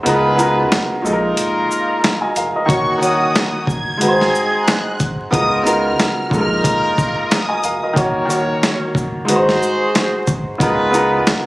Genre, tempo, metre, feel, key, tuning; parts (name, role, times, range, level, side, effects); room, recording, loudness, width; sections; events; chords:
hip hop, boom-bap hip-hop; 91 BPM; 4/4; swing 57% on 16ths; Eb minor; A4 = 441 Hz
warm upright piano; accompaniment; 0.0-11.5 s; Bb2 to Ab5; -17 LUFS; equal; high-pass filter, low-pass filter
clear horn section; stabs; 0.1-11.3 s; C4 to Db5; -20 LUFS; equal; high-pass filter, low-pass filter, digital delay
saturated sub bass; bass; 0.1-11.2 s; Eb1 to Db2; -26 LUFS; equal
dusty soul sampler-style drum kit; drums; 0.1-11.4 s; hi-hat, kick drum, shaker, snare drum; -18 LUFS; equal
warm studio violin section; melody; 2.7-7.6 s; Db6 to Ab6; -22 LUFS; equal; high-pass filter, low-pass filter, digital delay
light reverb, small room ambience; recorded on a phone in the room, club reverb, vinyl crackle, compression; -14 LUFS; side -19 dB against mid
0.0-11.5 A section
break 0.1-2.7
0.1 Db13; 1.0 Bb7sus4; 2.7 Ebm7; 4.0 Ab7; 5.3 Db13; 6.3 Bb7sus4; 8.0 Ebm7; 9.3 Ab7; 10.6 Db13